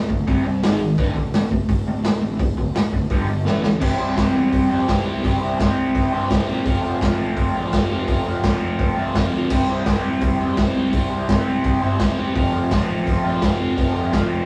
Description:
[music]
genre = garage rock duo or trio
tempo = 169 BPM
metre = 4/4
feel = straight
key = unclear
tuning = A4 = 440 Hz
[part]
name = crunchy overdriven guitar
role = riff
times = 0.0-14.5 s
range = D2 to C5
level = -23 LUFS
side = equal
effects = phaser
[part]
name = fuzz picked electric bass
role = bass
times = 0.0-14.4 s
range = D1 to Bb2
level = -30 LUFS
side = equal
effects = overdrive
[part]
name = raw garage drum kit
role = drums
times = 0.1-14.2 s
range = crash cymbal, hi-hat, kick drum, snare drum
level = -24 LUFS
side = equal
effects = none
[sound]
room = moderate stone room reverb, RT60 0.9 s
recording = rough rehearsal-room recording, warm saturation, studio ambience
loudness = -20 LUFS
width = mono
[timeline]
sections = 0.0-3.8 A section; 3.8-14.5 B section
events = drum fill 3.5-3.8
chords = 0.3 C5; 0.6 G#5; 1.0 D5; 3.1 G5; 3.5 A5; 3.8 C; 6.7 F; 9.5 C; 12.4 F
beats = 0.28 0.63 | 0.99 1.34 1.70 2.05 | 2.40 2.75 3.11 3.46 | 3.82 4.17 4.53 4.88 | 5.24 5.59 5.95 6.30 | 6.66 7.01 7.37 7.73 | 8.08 8.44 8.79 9.15 | 9.51 9.86 10.22 10.58 | 10.93 11.29 11.64 12.00 | 12.36 12.71 13.07 13.42 | 13.78 14.13

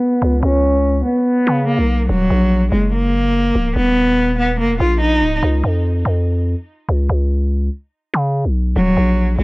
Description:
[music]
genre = hip hop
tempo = 144 BPM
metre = 4/4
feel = half-time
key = Eb minor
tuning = A4 = 440 Hz
[part]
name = warm cello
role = melody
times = 0.0-5.4, 8.8-9.4 s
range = Gb3 to F4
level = -16 LUFS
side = equal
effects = low-pass filter, tape echo
[part]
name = growling 808-style bass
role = bass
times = 0.2-9.4 s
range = Db1 to Db3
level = -16 LUFS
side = equal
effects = none
[sound]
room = small room reverb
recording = dry, gritty hardware recording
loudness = -14 LUFS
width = side -23 dB against mid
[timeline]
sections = 0.0-9.4 A section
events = filter sweep on cello 0.0-2.1; break 5.4-8.8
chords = 0.0 N.C.; 2.1 Ebm; 5.4 Db; 8.8 Ebm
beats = 0.01 | 0.43 0.84 1.26 1.68 | 2.09 2.51 2.93 3.34 | 3.76 4.18 4.59 5.01 | 5.43 5.84 6.26 6.68 | 7.09 7.51 7.93 8.34 | 8.76 9.18

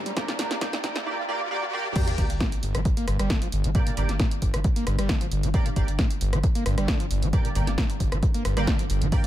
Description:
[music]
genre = driving peak-time techno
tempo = 134 BPM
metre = 4/4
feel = straight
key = G minor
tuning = A4 = 440 Hz
[part]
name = screaming distorted acid line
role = riff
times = 0.0-9.3 s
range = G1 to Bb3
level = -31 LUFS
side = equal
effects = distortion, wide subtle chorus, sidechain pumping, ping-pong delay
[part]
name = deep dark ambient pad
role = drone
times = 0.0-9.3 s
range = G2 to D3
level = -36 LUFS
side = right 1 dB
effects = chorus, built-in reverb, sidechain pumping
[part]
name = riser and sub drop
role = sound effects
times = 0.0-3.7 s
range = none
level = -33 LUFS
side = equal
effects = none
[part]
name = airy breathy pad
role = texture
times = 0.0-1.1 s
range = G4 to Bb5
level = -42 LUFS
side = right 1 dB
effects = none
[part]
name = punchy analog drum machine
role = drums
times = 0.1-9.3 s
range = crash cymbal, hi-hat, ride cymbal, rim click, snare drum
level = -31 LUFS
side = equal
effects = none
[part]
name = sync-sweep polysynth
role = stabs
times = 0.2-9.2 s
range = Bb3 to D5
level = -32 LUFS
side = right 2 dB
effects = ensemble chorus, sidechain pumping, ping-pong delay
[part]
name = electronic kick drum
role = drums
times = 0.2-9.2 s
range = none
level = -24 LUFS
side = equal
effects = none
[part]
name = saturated sub bass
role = bass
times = 2.2-9.1 s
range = G1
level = -26 LUFS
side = equal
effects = sidechain pumping, low-pass filter
[sound]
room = little or no reverb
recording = high-pass filter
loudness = -22 LUFS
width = side -13 dB against mid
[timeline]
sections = 0.0-2.0 A section; 2.0-9.3 B section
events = build-up 0.0-2.0; drum fill 0.0-1.1; riser 0.0-2.0; drop 2.0-9.3; impact 2.0-3.7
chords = 0.0 Gm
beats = | 0.17 0.61 1.06 1.51 | 1.96 2.40 2.85 3.30 | 3.75 4.20 4.64 5.09 | 5.54 5.99 6.43 6.88 | 7.33 7.78 8.23 8.67 | 9.12

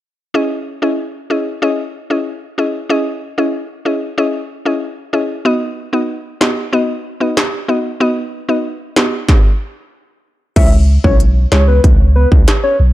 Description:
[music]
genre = dancehall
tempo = 94 BPM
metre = 4/4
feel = straight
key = C# minor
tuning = A4 = 440 Hz
[part]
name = mallet-like synth pluck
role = accompaniment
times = 0.3-11.8 s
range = G#3 to D#5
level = -16 LUFS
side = left 1 dB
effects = chorus, sidechain pumping
[part]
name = industrial drum kit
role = drums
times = 6.4-12.6 s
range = crash cymbal, hi-hat, kick drum, snare drum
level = -12 LUFS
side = equal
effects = distortion
[part]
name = soft octave-layered synth lead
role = melody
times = 10.6-12.8 s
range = B4 to E5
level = -17 LUFS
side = left 2 dB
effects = chorus, digital delay
[part]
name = punchy sub bass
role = bass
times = 10.6-12.9 s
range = B1 to C#2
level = -10 LUFS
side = equal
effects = none
[sound]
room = digital ambience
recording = dark, warm production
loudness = -13 LUFS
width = side -15 dB against mid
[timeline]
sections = 0.3-10.6 A section; 10.6-12.9 B section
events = none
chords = 0.3 C#madd9; 5.5 B; 10.6 C#m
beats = | 0.35 0.99 1.63 2.26 | 2.90 3.54 4.18 4.82 | 5.46 6.09 6.73 7.37 | 8.01 8.65 9.29 9.92 | 10.56 11.20 11.84 12.48

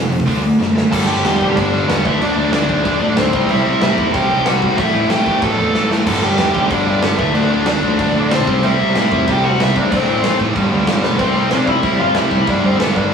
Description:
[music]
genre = punk rock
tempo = 187 BPM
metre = 4/4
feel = straight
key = G major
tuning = A4 = 440 Hz
[part]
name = tight distorted guitar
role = riff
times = 0.0-13.1 s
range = F2 to D4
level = -23 LUFS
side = left 5 dB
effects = distortion
[part]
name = tight distorted guitar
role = riff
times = 0.0-13.1 s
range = F2 to D4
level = -21 LUFS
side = right 4 dB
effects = distortion
[part]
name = fuzz picked electric bass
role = bass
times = 0.0-13.1 s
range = F1 to C3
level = -22 LUFS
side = right 1 dB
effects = overdrive
[part]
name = big rock drum kit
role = drums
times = 0.1-13.0 s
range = crash cymbal, hi-hat, kick drum, snare drum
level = -19 LUFS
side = equal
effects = none
[part]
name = dark smooth lead guitar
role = melody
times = 0.9-13.1 s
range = B3 to A5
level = -18 LUFS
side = left 1 dB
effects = overdrive
[part]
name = thick fuzz guitar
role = riff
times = 0.9-13.1 s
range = G2 to G4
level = -22 LUFS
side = equal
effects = distortion
[sound]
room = moderate stone room reverb, RT60 1.3 s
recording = rough rehearsal-room recording, tube saturation, studio reverb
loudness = -13 LUFS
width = side -6 dB against mid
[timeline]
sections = 0.9-11.2 A section; 11.2-13.1 B section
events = drum fill 0.6-0.9, 5.7-6.1, 11.0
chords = 0.3 D; 0.9 G; 2.0 D; 3.3 C; 4.8 Am; 6.1 G; 7.2 D; 8.5 C; 9.9 Am; 10.6 G; 11.2 C; 12.5 G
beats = 0.27 0.60 | 0.92 1.24 1.56 1.89 | 2.21 2.53 2.85 3.18 | 3.50 3.82 4.14 4.46 | 4.78 5.10 5.42 5.75 | 6.07 6.39 6.71 7.03 | 7.35 7.67 7.99 8.31 | 8.63 8.95 9.27 9.59 | 9.91 10.23 10.55 10.87 | 11.19 11.51 11.84 12.16 | 12.48 12.80 13.12

